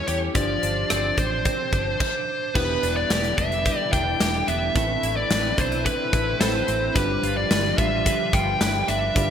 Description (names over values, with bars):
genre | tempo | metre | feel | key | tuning
1980s-style pop | 109 BPM | 4/4 | straight | unclear | A4 = 440 Hz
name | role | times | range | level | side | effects
fuzz lead guitar | melody | 0.0-9.3 s | B4 to G5 | -24 LUFS | left 1 dB | distortion, digital delay
FM electric piano | accompaniment | 0.0-9.3 s | C4 to B5 | -31 LUFS | equal | chorus, phaser
twelve-string electric guitar | riff | 0.0-9.3 s | F3 to B4 | -31 LUFS | right 4 dB | ensemble chorus
vintage muted fingered electric bass | bass | 0.1-9.3 s | E1 to E2 | -29 LUFS | equal | none
big rock drum kit | drums | 0.1-9.3 s | crash cymbal, hi-hat, kick drum, rim click, snare drum | -25 LUFS | equal | gated reverb
warm analog pad | sustained chords | 2.6-9.3 s | D3 to F4 | -32 LUFS | equal | chorus
room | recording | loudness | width
wet lush hall reverb, RT60 2.3 s | bright 1980s-style digital production | -20 LUFS | side -8 dB against mid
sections
0.0-2.6 A section; 2.6-9.3 B section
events
none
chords
0.4 G7sus4; 2.6 Em7; 4.8 Amadd9; 7.0 G7